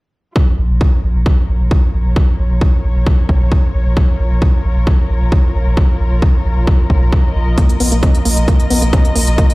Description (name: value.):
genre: driving peak-time techno.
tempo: 133 BPM.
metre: 4/4.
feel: straight.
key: Bb minor.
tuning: A4 = 439 Hz.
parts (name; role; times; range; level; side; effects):
electronic kick drum; drums; 0.4-9.5 s; none; -12 LUFS; equal; overdrive, studio reverb.
muted studio string section; texture; 0.4-9.5 s; F4 to Bb5; -25 LUFS; left 2 dB; sidechain pumping.
saturated sub bass; bass; 0.6-9.4 s; Bb1; -15 LUFS; equal; sidechain pumping, low-pass filter.
woody wave-folded pluck; riff; 7.6-9.4 s; Bb3 to Db4; -19 LUFS; equal; chorus, sidechain pumping, tape echo.
electronic hi-hat; drums; 7.6-9.5 s; none; -21 LUFS; equal; overdrive, studio reverb.
room: little or no reverb.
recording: played on a big sound system in a bare room, large studio reverb.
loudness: -11 LUFS.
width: side -22 dB against mid.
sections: 0.4-9.5 A section.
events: fade-in on string section 0.4-9.5.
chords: 0.4 Bbm.